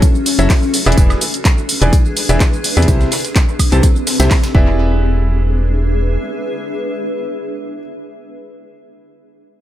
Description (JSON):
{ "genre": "piano house", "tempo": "126 BPM", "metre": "4/4", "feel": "swing 53% on 16ths", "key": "E mixolydian", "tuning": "A4 = 440 Hz", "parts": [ { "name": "clear grand piano", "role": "riff", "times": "0.0-7.8 s", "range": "C3 to A5", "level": "-20 LUFS", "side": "left 1 dB", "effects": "sidechain pumping, analog delay" }, { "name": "breakbeat sampler-style drum kit", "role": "drums", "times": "0.0-4.5 s", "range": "hi-hat, snare drum, tambourine", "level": "-28 LUFS", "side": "right 1 dB", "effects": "sidechain pumping on perc, high-pass filter on perc, studio reverb, high-pass filter on snare, sidechain pumping on hats, high-pass filter on hats, analog delay" }, { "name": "electronic kick drum", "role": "drums", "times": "0.0-4.6 s", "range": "none", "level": "-12 LUFS", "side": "equal", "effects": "studio reverb" }, { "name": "house drum kit", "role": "drums", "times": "0.0-4.5 s", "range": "handclaps, hi-hat, shaker, woodblock", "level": "-19 LUFS", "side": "equal", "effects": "studio reverb, analog delay" }, { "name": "granular cloud pad", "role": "texture", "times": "0.0-8.2 s", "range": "C4 to E5", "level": "-22 LUFS", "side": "left 1 dB", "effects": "built-in reverb, sidechain pumping" }, { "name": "organ-like FM bass", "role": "bass", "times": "0.4-6.2 s", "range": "E1 to E2", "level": "-14 LUFS", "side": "equal", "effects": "sidechain pumping" } ], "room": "little or no reverb", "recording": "echo-heavy mix", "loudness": "-12 LUFS", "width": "side -12 dB against mid", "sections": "0.0-4.8 A section; 4.8-8.6 B section", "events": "drop 0.0-4.8", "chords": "0.0 F#m7; 0.7 E7; 2.9 C6; 4.5 E7" }